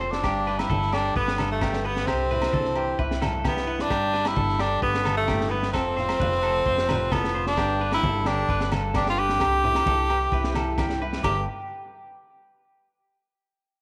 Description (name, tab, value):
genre	highlife guitar band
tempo	131 BPM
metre	4/4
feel	straight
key	G mixolydian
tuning	A4 = 440 Hz
part	edgy tenor saxophone	melody	0.0-11.4 s	A3 to G4	-27 LUFS	equal	none
part	flamenco guitar	accompaniment	0.0-11.5 s	E2 to G4	-35 LUFS	equal	none
part	clean electric guitar	arpeggios	0.0-11.5 s	G4 to C5	-34 LUFS	equal	spring reverb, tape echo
part	upright bass	bass	0.0-11.5 s	F1 to C2	-33 LUFS	equal	none
part	congas	percussion	0.0-11.5 s	none	-36 LUFS	equal	none
part	crunchy breakbeat drum kit	drums	0.1-11.4 s	crash cymbal, kick drum, snare drum	-34 LUFS	equal	none
part	agogo bells	percussion	0.2-11.4 s	none	-38 LUFS	equal	none
room	light reverb, small room ambience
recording	none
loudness	-24 LUFS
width	mono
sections	0.0-11.2 A section; 11.2-13.1 B section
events	none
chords	0.2 G; 2.1 Cadd9; 3.9 G; 5.7 F; 7.6 G; 9.4 Cadd9; 11.2 G5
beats	| 0.24 0.70 1.16 1.62 | 2.08 2.54 3.00 3.46 | 3.92 4.37 4.83 5.29 | 5.75 6.21 6.67 7.12 | 7.58 8.04 8.50 8.95 | 9.41 9.87 10.33 10.78 | 11.24